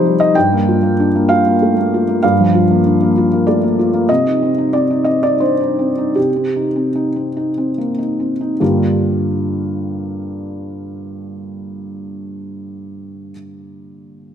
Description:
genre	neoclassical minimalist piano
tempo	70-98 BPM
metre	3/4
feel	rubato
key	G minor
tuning	A4 = 440 Hz
part	felt-muted upright piano	solo	0.0-14.3 s	G2 to G5	-14 LUFS	equal	none
room	moderate concert hall reverb, RT60 2.0 s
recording	none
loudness	-13 LUFS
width	side -8 dB against mid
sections	0.0-8.6 A section; 8.6-13.4 B section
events	slowing down 3.2-8.6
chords	0.4 Gm7; 4.1 Cm; 8.6 Gm7

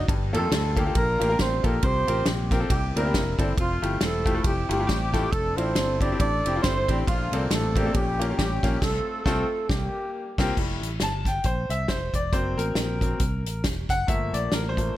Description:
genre	uptempo gospel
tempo	137 BPM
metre	4/4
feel	swing 57% on 8ths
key	F major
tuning	A4 = 439 Hz
part	mellow horn section	melody	0.0-10.5 s	F3 to D5	-27 LUFS	right 1 dB	none
part	fingered electric bass	bass	0.0-14.9 s	E1 to F2	-28 LUFS	equal	none
part	bright grand piano	accompaniment	0.1-15.0 s	G2 to A5	-29 LUFS	left 2 dB	none
part	natural country drum kit	drums	0.1-14.9 s	crash cymbal, hi-hat, kick drum, ride cymbal, snare drum	-26 LUFS	equal	none
room	small room ambience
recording	none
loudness	-22 LUFS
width	side -14 dB against mid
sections	0.0-10.6 A section; 10.6-15.0 B section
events	band accent 8.8-10.6; grand piano solo 10.6-15.0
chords	0.1 Gm9; 1.8 C7sus4; 2.7 C9; 3.6 Fmaj9; 5.3 Dm9/F; 7.1 Bbmaj9; 7.9 Bbm6; 8.8 F/C; 9.7 C7sus4; 10.6 Fmaj9; 12.3 Gb7#11; 14.1 Gm9

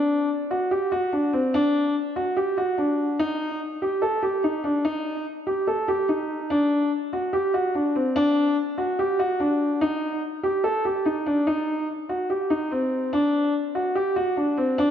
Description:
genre	hip hop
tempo	145 BPM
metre	4/4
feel	half-time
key	unclear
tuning	A4 = 436 Hz
part	warm concert grand piano	solo	0.0-14.9 s	C4 to A4	-22 LUFS	equal	low-pass filter, tape echo
room	wet lush hall reverb, RT60 1.8 s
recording	dreamy mix soaked in reverb, nothing above 7.5 kHz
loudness	-22 LUFS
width	side -9 dB against mid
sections	0.0-6.5 A section; 6.5-14.9 A section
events	none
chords	none

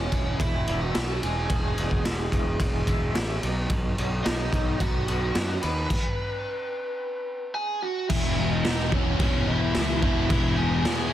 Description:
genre	quiet-loud alternative rock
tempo	109 BPM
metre	4/4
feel	straight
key	E major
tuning	A4 = 441 Hz
part	lead guitar through a small cranked amp	melody	0.0-11.1 s	C#4 to B5	-31 LUFS	right 2 dB	overdrive, slapback echo
part	twangy electric guitar	arpeggios	0.0-5.9 s	E2 to F#4	-36 LUFS	equal	tremolo
part	fuzz picked electric bass	bass	0.0-11.1 s	E1 to F#2	-28 LUFS	equal	overdrive
part	raw garage drum kit	drums	0.1-11.0 s	crash cymbal, kick drum, ride cymbal, snare drum	-27 LUFS	equal	none
part	distorted electric guitar	riff	8.1-11.1 s	E2 to E3	-32 LUFS	equal	distortion
part	sludgy distorted guitar	riff	8.1-11.1 s	E2 to E3	-28 LUFS	left 3 dB	overdrive
room	little or no reverb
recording	dense, heavily limited modern master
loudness	-23 LUFS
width	side -12 dB against mid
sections	0.0-8.1 A section; 8.1-11.1 B section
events	stop 5.9-8.1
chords	0.0 E6; 3.4 B; 8.1 E6

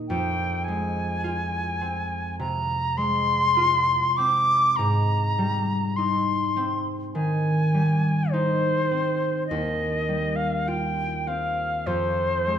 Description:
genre	classical, impressionist duo for flute and harp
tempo	51 BPM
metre	4/4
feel	rubato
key	unclear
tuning	A4 = 440 Hz
part	concert harp	accompaniment	0.0-12.6 s	Eb2 to G4	-26 LUFS	equal	none
part	silver concert flute	melody	0.1-12.6 s	C5 to D6	-24 LUFS	left 1 dB	none
room	wet recital hall reverb, RT60 1.5 s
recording	none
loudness	-22 LUFS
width	side -9 dB against mid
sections	0.0-12.6 A section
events	none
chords	0.1 Fm; 4.8 Abmaj7; 9.5 Eb69; 11.9 Fm

